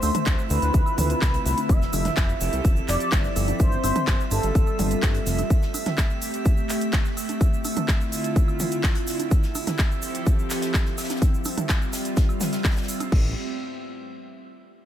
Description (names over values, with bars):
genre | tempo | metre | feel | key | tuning
progressive house | 126 BPM | 4/4 | straight | A minor | A4 = 439 Hz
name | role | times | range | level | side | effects
expressive synth lead | melody | 0.0-5.4 s | A4 to E5 | -28 LUFS | equal | analog chorus, sidechain pumping, digital delay
evolving wavetable pad | sustained chords | 0.0-13.3 s | D3 to A4 | -30 LUFS | equal | chorus, built-in reverb, sidechain pumping
fat analog bass | bass | 0.0-5.4, 13.1-13.3 s | F1 to G2 | -26 LUFS | equal | sidechain pumping
house drum kit | drums | 0.0-13.2 s | crash cymbal, handclaps, hi-hat | -32 LUFS | equal | studio reverb
natural country drum kit | drums | 0.0-13.0 s | hi-hat, shaker, snare drum | -41 LUFS | left 1 dB | none
electronic congas, woodblock and toms | percussion | 0.0-13.1 s | none | -31 LUFS | right 3 dB | sidechain pumping on perc, studio reverb, sidechain pumping on toms
tube shaker | percussion | 0.0-13.1 s | none | -37 LUFS | right 2 dB | none
downlifter | sound effects | 0.0-1.7 s | none | -44 LUFS | equal | none
drifting glass-harmonics texture | texture | 0.0-13.1 s | E5 | -36 LUFS | right 6 dB | chorus, built-in reverb, sidechain pumping
electronic kick drum | drums | 0.3-13.2 s | none | -21 LUFS | equal | studio reverb
room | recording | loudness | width
digital ambience | none | -21 LUFS | side -11 dB against mid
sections
0.0-13.1 A section; 13.1-14.9 B section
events
none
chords
0.0 Dm7; 1.7 Fmaj7; 3.6 G7sus4; 5.5 Am7; 7.4 Dm7; 9.3 Fmaj7; 11.2 G7sus4; 13.1 Am7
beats
0.27 0.74 1.22 | 1.69 2.17 2.65 3.12 | 3.60 4.08 4.55 5.03 | 5.50 5.98 6.46 6.93 | 7.41 7.88 8.36 8.84 | 9.31 9.79 10.27 10.74 | 11.22 11.69 12.17 12.65 | 13.12